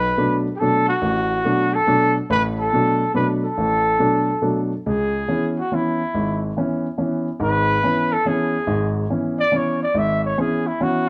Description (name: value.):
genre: jazz.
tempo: 141 BPM.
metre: 3/4.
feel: swing 67% on 8ths.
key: C# phrygian from 4.8 s.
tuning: A4 = 440 Hz.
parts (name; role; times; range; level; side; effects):
breathy trumpet; melody; 0.0-11.1 s; E4 to E5; -22 LUFS; equal; plate reverb.
warm grand piano; accompaniment; 0.0-11.1 s; G#1 to D4; -23 LUFS; equal; none.
room: moderate club reverb, RT60 0.8 s.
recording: close, detailed microphones.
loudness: -20 LUFS.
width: mono.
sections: 0.0-4.8 A section; 4.8-11.1 B section.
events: trumpet solo 4.8-11.1.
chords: 0.0 D; 4.8 C#m7.